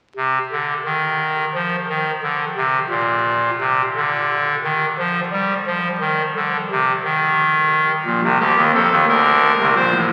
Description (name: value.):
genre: classical, baroque-style 3-part fugue for pipe organ.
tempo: 58 BPM (dotted quarters).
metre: 12/8.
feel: straight.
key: unclear.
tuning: A4 = 440 Hz.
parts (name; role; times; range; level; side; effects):
pipe organ, clarinet reed; solo; 0.2-10.1 s; A1 to C5; -18 LUFS; equal; none.
room: wet cathedral reverb, RT60 7.1 s.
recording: very old 78 rpm record, vinyl crackle.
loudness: -18 LUFS.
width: mono.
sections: 0.0-10.1 A section.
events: none.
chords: 0.0 N.C.; 8.1 Gm/Bb (rootless).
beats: 0.86 1.90 2.93 | 3.96 4.99 6.01 7.04 | 8.06 9.08.